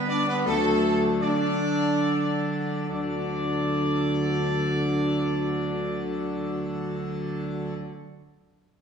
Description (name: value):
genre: classical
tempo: free time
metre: none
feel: none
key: D major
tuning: A4 = 440 Hz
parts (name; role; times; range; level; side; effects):
- dark trumpet section; melody; 0.0-7.7 s; A4 to D5; -31 LUFS; equal; none
- dark trombone section; sustained chords; 0.0-7.7 s; D3 to D4; -32 LUFS; right 3 dB; none
- mellow French horn section; sustained chords; 0.0-7.7 s; A3 to D4; -30 LUFS; left 2 dB; none
- pipe organ, full organ; sustained chords; 0.0-7.7 s; D3 to B4; -30 LUFS; equal; none
- warm tuba; bass; 0.5-7.7 s; D2; -29 LUFS; equal; none
room: wet recital hall reverb, RT60 1.3 s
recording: heard from further back in the room, studio reverb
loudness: -23 LUFS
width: side -7 dB against mid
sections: 0.0-2.9 A section; 2.9-8.0 B section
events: slowing down 0.0-2.9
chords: 0.5 D